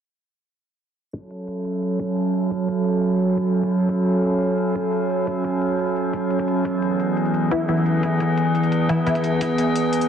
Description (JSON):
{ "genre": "dark technical drum and bass", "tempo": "174 BPM", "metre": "4/4", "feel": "straight", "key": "F# minor", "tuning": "A4 = 438 Hz", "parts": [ { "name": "metallic inharmonic drone", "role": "sustained chords", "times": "1.3-10.1 s", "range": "E3 to A4", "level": "-19 LUFS", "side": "right 1 dB", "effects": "chorus, built-in reverb, sidechain pumping" }, { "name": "electronic hi-hat", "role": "drums", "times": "1.1-10.1 s", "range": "none", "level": "-40 LUFS", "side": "left 1 dB", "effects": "studio reverb" }, { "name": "electronic kick drum", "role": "drums", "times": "1.1-9.5 s", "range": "none", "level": "-36 LUFS", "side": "left 1 dB", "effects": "high-pass filter on kick, studio reverb" }, { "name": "filtered dub chord stab", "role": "stabs", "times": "7.5-10.1 s", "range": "E3 to E4", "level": "-23 LUFS", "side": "left 1 dB", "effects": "phaser, analog chorus, digital delay" } ], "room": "moderate digital room reverb, RT60 1.4 s", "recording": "dense, heavily limited modern master, low-pass filter", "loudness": "-19 LUFS", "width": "side -8 dB against mid", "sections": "1.1-10.1 A section", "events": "filter sweep 1.1-10.1", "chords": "1.1 F#m; 6.7 E", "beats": "| 1.13 1.48 1.82 2.17 | 2.51 2.86 3.20 3.55 | 3.89 4.24 4.58 4.93 | 5.27 5.62 5.96 6.31 | 6.65 7.00 7.34 7.69 | 8.03 8.38 8.72 9.06 | 9.41 9.76" }